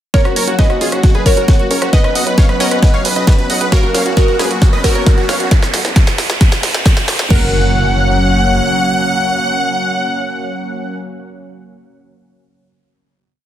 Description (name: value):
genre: uplifting trance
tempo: 134 BPM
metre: 4/4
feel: straight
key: F# major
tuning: A4 = 441 Hz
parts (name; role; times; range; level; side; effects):
- dense compressed supersaw; melody; 0.1-11.0 s; E#4 to F#5; -18 LUFS; equal; sidechain pumping, tape echo
- glassy wavetable pluck; second line; 0.1-11.0 s; F#4 to F#5; -19 LUFS; equal; chorus, tape echo
- lush unison pad; sustained chords; 0.1-11.0 s; F#3 to C#4; -21 LUFS; equal; chorus, sidechain pumping
- electronic kick drum; drums; 0.1-7.4 s; none; -11 LUFS; equal; none
- house drum kit; drums; 0.1-7.4 s; crash cymbal, hi-hat, rim click, snare drum; -19 LUFS; right 1 dB; high-pass filter on snare, sidechain pumping on hats, high-pass filter on hats, sidechain pumping on cymbals, high-pass filter on cymbals, high-pass filter on room
- riser and impact; sound effects; 1.9-11.0 s; none; -24 LUFS; right 1 dB; none
- plucky analog bass; bass; 0.4-8.6 s; F#1 to C#2; -20 LUFS; equal; sidechain pumping, high-pass filter
room: light reverb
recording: none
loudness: -11 LUFS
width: side -11 dB against mid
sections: 0.1-7.3 build; 7.3-10.9 final chord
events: build-up 0.1-7.3; drum fill 0.1-7.3; riser 1.9-7.3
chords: 0.1 F#; 1.9 Bsus2; 3.7 F#/A#; 4.6 Bsus2; 5.5 N.C.; 6.4 G#sus2; 7.3 F#